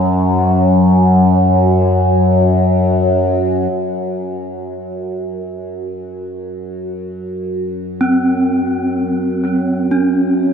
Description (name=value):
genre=dark ambient drone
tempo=free time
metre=none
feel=none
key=unclear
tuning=A4 = 440 Hz
part: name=gamelan-type bronze metallophone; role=arpeggios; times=0.0-10.5 s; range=F#3 to C#4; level=-17 LUFS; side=right 1 dB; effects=tape echo
part: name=overtone-sweeping drone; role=drone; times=0.0-10.5 s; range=F#2 to F#3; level=-14 LUFS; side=left 1 dB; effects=chorus, built-in reverb, phaser
room=wet huge ambient reverb, RT60 7.6 s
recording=dark, warm production, nothing above 10.5 kHz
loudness=-12 LUFS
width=side -7 dB against mid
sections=0.0-3.7 A section; 3.7-10.5 B section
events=none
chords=0.0 N.C.; 3.7 F#5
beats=free time